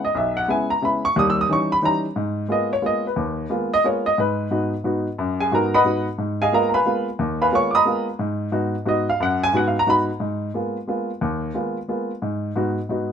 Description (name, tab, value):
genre	jazz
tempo	179 BPM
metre	3/4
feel	swing 63% on 8ths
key	G# dorian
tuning	A4 = 440 Hz
part	warm baby grand piano	solo	0.0-13.1 s	B1 to E6	-19 LUFS	equal	none
room	light reverb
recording	minimal, uncompressed stereo recording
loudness	-19 LUFS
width	side -8 dB against mid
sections	0.0-2.2 A section; 2.2-10.2 A section; 10.2-13.1 B section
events	none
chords	0.0 E; 1.1 D#7b9; 2.2 G#m69; 4.2 B/G#; 6.2 G#m69; 8.2 B/G#; 10.2 G#m69; 12.2 B/G#